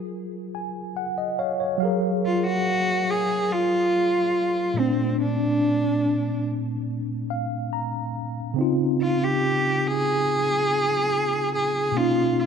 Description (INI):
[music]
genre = R&B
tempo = 71 BPM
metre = 4/4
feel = straight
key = unclear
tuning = A4 = 440 Hz
[part]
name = mellow tine electric piano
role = accompaniment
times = 0.0-12.5 s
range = Bb2 to Bb5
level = -24 LUFS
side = equal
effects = medium stereo tremolo
[part]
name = warm cello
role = melody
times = 2.3-12.5 s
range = C4 to Ab4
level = -22 LUFS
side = right 1 dB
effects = none
[sound]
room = moderate lush hall reverb, RT60 2.4 s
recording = dark, warm production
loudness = -21 LUFS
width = side -6 dB against mid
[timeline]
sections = 0.0-1.8 A section; 1.8-12.5 B section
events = tine electric piano fill 0.1-1.8, 6.9-8.6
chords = 0.0 Gbmaj9; 4.8 Bbmaj9; 8.6 Dbmaj9; 11.9 Bmaj9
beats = 0.12 0.96 | 1.81 2.65 3.50 4.34 | 5.19 6.04 6.88 7.72 | 8.57 9.41 10.26 11.11 | 11.95